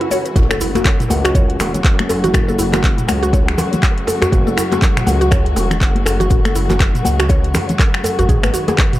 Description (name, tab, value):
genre	afro house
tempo	121 BPM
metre	4/4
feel	swing 59% on 16ths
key	F# minor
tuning	A4 = 440 Hz
part	dark chamber string section	sustained chords	0.0-9.0 s	C#3 to F#4	-23 LUFS	left 2 dB	sidechain pumping
part	mallet-like synth pluck	arpeggios	0.0-8.8 s	E4 to F#5	-21 LUFS	equal	chorus, sidechain pumping, dub echo
part	afro-pop drum kit	drums	0.0-9.0 s	finger snaps, handclaps, hi-hat, toms	-22 LUFS	equal	none
part	swell and impact	sound effects	0.0-2.3 s	none	-27 LUFS	right 1 dB	none
part	cabasa	percussion	0.1-9.0 s	none	-30 LUFS	right 3 dB	none
part	congas	percussion	0.1-9.0 s	none	-22 LUFS	left 2 dB	none
part	djembe	percussion	0.1-8.9 s	none	-25 LUFS	right 2 dB	analog delay
part	smooth synth bass	bass	0.4-8.5 s	E1 to C#2	-19 LUFS	equal	sidechain pumping
part	electronic kick drum	drums	0.4-8.9 s	none	-14 LUFS	equal	none
room	light reverb, studio reverb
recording	echo-heavy mix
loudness	-13 LUFS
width	side -15 dB against mid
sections	0.4-9.0 A section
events	break 0.0-0.4; swell 0.0-0.4; drop 0.4-9.0; impact 0.4-2.3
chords	0.4 F#madd9; 8.3 G#m7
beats	| 0.36 0.85 1.35 1.84 | 2.34 2.84 3.33 3.83 | 4.33 4.82 5.32 5.81 | 6.31 6.80 7.30 7.80 | 8.29 8.79